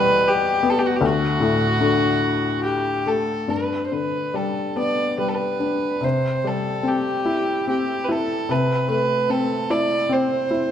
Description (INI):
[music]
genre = celtic folk, Celtic slow air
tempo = 72 BPM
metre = 3/4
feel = uneven beats, rubato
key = G major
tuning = A4 = 442 Hz
[part]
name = warm fiddle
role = melody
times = 0.0-10.7 s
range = F#4 to D5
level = -22 LUFS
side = right 2 dB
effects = none
[part]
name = felt-muted upright piano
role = accompaniment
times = 0.0-10.7 s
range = D2 to E4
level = -22 LUFS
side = left 3 dB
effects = none
[sound]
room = moderate scoring stage reverb, RT60 1.6 s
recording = dark, warm production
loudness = -19 LUFS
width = side -9 dB against mid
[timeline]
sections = 0.0-3.5 A section; 3.5-10.7 B section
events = none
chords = 0.0 Em; 1.0 D; 3.5 G; 6.0 C; 8.5 Am/C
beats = 0.26 | 1.03 1.83 2.65 | 3.51 4.37 5.21 | 6.04 6.86 7.69 | 8.50 9.30 10.10